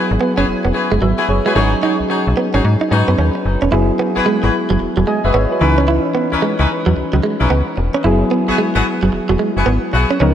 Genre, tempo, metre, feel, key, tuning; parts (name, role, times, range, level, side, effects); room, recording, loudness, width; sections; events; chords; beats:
R&B; 111 BPM; 4/4; swing 63% on 16ths; A4 = 444 Hz
soft electric-piano-like synth keys; accompaniment; 0.0-10.3 s; E3 to G#5; -18 LUFS; left 1 dB; chorus
warm horn section; stabs; 0.0-10.1 s; B3 to C#5; -21 LUFS; left 2 dB; analog delay
slap-like FM bass; bass; 0.1-10.3 s; E1 to G#2; -16 LUFS; equal
direct-recorded clean electric guitar; riff; 0.2-10.3 s; F#3 to E4; -19 LUFS; right 4 dB; lush chorus
moderate plate reverb, RT60 2.5 s; dreamy mix soaked in reverb; -13 LUFS; side -10 dB against mid
0.0-3.7 A section; 3.7-10.3 B section
0.0 F#9sus4; 1.6 G#7sus4; 8.0 F#9sus4
0.48 1.02 | 1.56 2.10 2.64 3.18 | 3.72 4.26 4.80 5.34 | 5.88 6.42 6.96 7.50 | 8.04 8.59 9.12 9.67 | 10.21